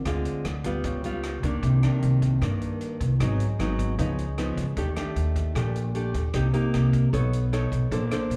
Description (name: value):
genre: bossa nova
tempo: 153 BPM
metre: 4/4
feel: straight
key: unclear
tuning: A4 = 439 Hz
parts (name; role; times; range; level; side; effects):
- nylon-string guitar; accompaniment; 0.0-8.4 s; G2 to C#5; -29 LUFS; equal; none
- upright bass; bass; 0.0-8.4 s; Ab1 to G2; -28 LUFS; equal; none
- vintage drum kit; drums; 0.1-8.4 s; hi-hat, kick drum, rim click; -38 LUFS; equal; none
room: small room ambience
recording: live gig heard through the venue's PA, club reverb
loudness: -26 LUFS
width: mono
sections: 0.0-8.4 A section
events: none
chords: 0.1 Dm7b5; 0.8 C#7#11; 1.6 Cm9; 3.2 Abm7; 4.0 C#9; 4.8 Ebmaj7#11; 6.3 Cm7; 7.1 B9